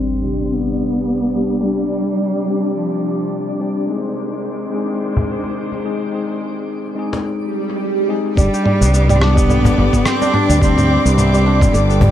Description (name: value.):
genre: organic downtempo.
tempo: 107 BPM.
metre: 4/4.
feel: swing 56% on 16ths.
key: unclear.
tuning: A4 = 440 Hz.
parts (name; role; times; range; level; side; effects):
rich cello; melody; 0.0-3.6, 8.4-12.1 s; F3 to D4; -19 LUFS; equal; analog delay.
tine electric piano; accompaniment; 0.0-12.1 s; C3 to Ab4; -22 LUFS; left 3 dB; wide subtle chorus, sidechain pumping, low-pass filter, dub echo.
rich studio string section; sustained chords; 0.0-12.1 s; C3 to D6; -27 LUFS; left 1 dB; sidechain pumping, low-pass filter.
kora; arpeggios; 0.0-0.9, 8.4-12.1 s; D3 to G4; -20 LUFS; right 2 dB; analog delay.
impact and swell; sound effects; 0.0-1.6, 7.4-8.4 s; none; -24 LUFS; right 3 dB; none.
twinkling granular texture; texture; 0.2-12.1 s; D4 to D6; -30 LUFS; right 1 dB; built-in reverb.
cajon; percussion; 5.2-12.1 s; none; -20 LUFS; left 1 dB; none.
fretless electric bass; bass; 8.4-12.1 s; G1 to D2; -14 LUFS; equal; sidechain pumping.
dusty soul sampler-style drum kit; drums; 8.4-12.1 s; cabasa, rim click, toms; -20 LUFS; right 1 dB; overdrive, low-pass filter on perc, low-pass filter on toms, low-pass filter on snare.
electronic kick drum; drums; 8.4-11.7 s; none; -15 LUFS; equal; overdrive.
room: light reverb, small room ambience.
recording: echo-heavy mix, low-pass filter.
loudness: -14 LUFS.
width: side -11 dB against mid.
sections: 0.0-8.4 A section; 8.4-12.1 B section.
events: impact 0.0-1.6; filter sweep on tine electric piano 0.0-8.4; filter sweep on string section 0.0-8.4; filter sweep 0.0-8.4; swell 7.4-8.4.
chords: 0.0 Gsus4; 3.9 Ab; 8.4 Gsus4.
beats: 0.52 1.08 | 1.65 2.21 2.77 3.33 | 3.89 4.45 5.01 5.57 | 6.13 6.69 7.25 7.81 | 8.37 8.94 9.49 10.06 | 10.62 11.18 11.74.